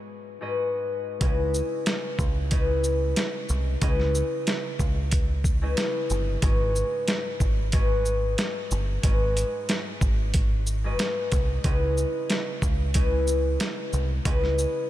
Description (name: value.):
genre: hip hop, boom-bap hip-hop.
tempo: 92 BPM.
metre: 4/4.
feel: swing 54% on 16ths.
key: C# minor.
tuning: A4 = 438 Hz.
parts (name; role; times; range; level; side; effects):
concert harp; accompaniment; 0.0-14.9 s; G#2 to D#5; -28 LUFS; left 2 dB; high-pass filter, low-pass filter.
deep dub picked electric bass; bass; 1.2-14.7 s; G1 to C#2; -26 LUFS; equal; none.
boom bap sampler-style drum kit; drums; 1.2-14.7 s; hi-hat, kick drum, shaker, snare drum; -26 LUFS; equal; none.
room: light reverb.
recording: none.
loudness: -23 LUFS.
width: side -14 dB against mid.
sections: 0.0-1.2 A section; 1.2-14.9 B section.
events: break 0.0-1.2.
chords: 0.0 G#m7; 1.2 C#m7; 6.4 G#m7; 11.6 C#m7.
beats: 0.56 | 1.21 1.86 2.51 3.17 | 3.82 4.47 5.12 5.78 | 6.43 7.08 7.73 8.38 | 9.04 9.69 10.34 10.99 | 11.64 12.30 12.95 13.60 | 14.25.